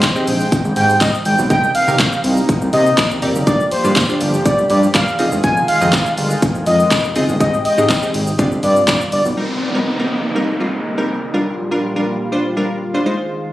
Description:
dance-pop; 122 BPM; 4/4; straight; C minor; A4 = 440 Hz
expressive synth lead; melody; 0.0-9.2 s; C5 to Ab5; -17 LUFS; equal; chorus, sidechain pumping, tape echo
wavetable chord stab; accompaniment; 0.0-13.5 s; G3 to F5; -20 LUFS; equal; sidechain pumping
chorused pulse-width pad; sustained chords; 0.0-13.5 s; Bb2 to G5; -23 LUFS; equal; sidechain pumping
house drum kit; drums; 0.0-9.4 s; handclaps, hi-hat, kick drum, shaker; -18 LUFS; equal
tambourine; percussion; 0.0-9.0 s; -27 LUFS; left 2 dB
fat analog bass; bass; 0.3-9.3 s; E1 to C3; -18 LUFS; equal; sidechain pumping
downlifter; sound effects; 9.4-13.3 s; -25 LUFS; left 1 dB
light reverb; recorded on a phone in the room, studio reverb; -13 LUFS; side -15 dB against mid
0.0-9.4 A section; 9.4-13.5 B section
drop 0.0-9.4
0.0 Abmaj7; 1.5 Cm7; 3.5 Gm7; 5.2 Fm7; 7.4 Abmaj7; 8.4 G7sus4; 9.4 Cm7; 11.3 Gm7

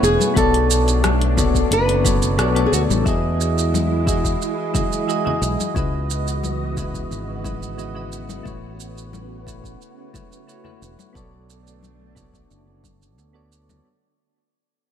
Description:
sunset chillout; 89 BPM; 4/4; straight; A4 = 442 Hz
flamenco guitar; melody; 0.0-2.8 s; F#4 to B4; -22 LUFS; right 1 dB; ping-pong delay
soft electric-piano-like synth keys; accompaniment; 0.0-13.9 s; C#3 to D#5; -24 LUFS; moving between left 6 dB and right 4 dB; chorus, tremolo, auto-pan, tape echo
soft string machine; sustained chords; 0.0-13.8 s; B2 to D#5; -28 LUFS; right 1 dB; phaser, ensemble chorus
fingered electric bass; bass; 0.0-13.8 s; E1 to E2; -22 LUFS; equal
deep house drum kit; drums; 0.0-13.8 s; hi-hat, rim click, shaker; -26 LUFS; right 3 dB
congas; percussion; 0.2-13.8 s; -28 LUFS; left 6 dB
electronic kick drum; drums; 0.4-13.0 s; -24 LUFS; equal
light reverb; -17 LUFS; side -9 dB against mid
0.0-13.8 A section
fade-out 0.0-13.8
0.4 Bm9; 3.1 Emaj7; 5.8 C#m11; 8.5 A69; 11.1 Bm9

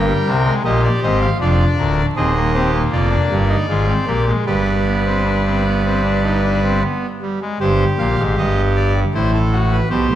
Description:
classical, baroque-style 4-part fugue for pipe organ; 78 BPM; 4/4; straight; C minor; A4 = 438 Hz
pipe organ, trumpet; solo; 0.0-10.2 s; D1 to G5; -14 LUFS; equal
wet scoring stage reverb, RT60 1.8 s; dark, warm production, vinyl crackle; -14 LUFS; side -12 dB against mid
0.0-7.6 A section; 7.6-10.2 B section
0.0 Eb/G; 1.4 Fm; 2.9 Ddim/F; 4.5 G; 7.6 Cm/G; 9.1 D7/A (rootless)

